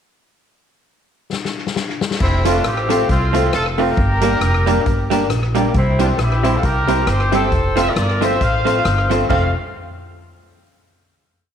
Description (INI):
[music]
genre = ska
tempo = 136 BPM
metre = 4/4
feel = swing 56% on 8ths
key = F major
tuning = A4 = 438 Hz
[part]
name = swinging big-band drum kit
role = drums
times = 1.3-9.4 s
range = crash cymbal, hi-hat, kick drum, rim click, snare drum, toms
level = -23 LUFS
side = left 2 dB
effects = slapback echo
[part]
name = warm horn section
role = melody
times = 2.2-9.5 s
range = C4 to F5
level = -21 LUFS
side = left 1 dB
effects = slapback echo
[part]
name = upright bass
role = bass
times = 2.2-9.5 s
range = F1 to C2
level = -19 LUFS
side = equal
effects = none
[part]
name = vintage hollow-body jazz guitar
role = accompaniment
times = 2.4-9.4 s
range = F3 to G4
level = -21 LUFS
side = right 10 dB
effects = slapback echo
[part]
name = clear upright piano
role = stabs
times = 2.4-9.5 s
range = A3 to C5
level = -22 LUFS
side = left 10 dB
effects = none
[sound]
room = light reverb, small room ambience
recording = 1960s-style stereo with parts hard left and right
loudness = -14 LUFS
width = side -8 dB against mid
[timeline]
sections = 0.4-2.2 pickup bar; 2.2-9.3 A section; 9.3-11.1 final chord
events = drum fill 1.3-2.2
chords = 0.4 N.C.; 2.2 F; 4.0 Gm; 5.7 C; 7.5 F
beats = | 0.44 0.88 1.33 1.77 | 2.21 2.65 3.09 3.54 | 3.98 4.42 4.86 5.31 | 5.75 6.19 6.63 7.08 | 7.52 7.96 8.41 8.85 | 9.29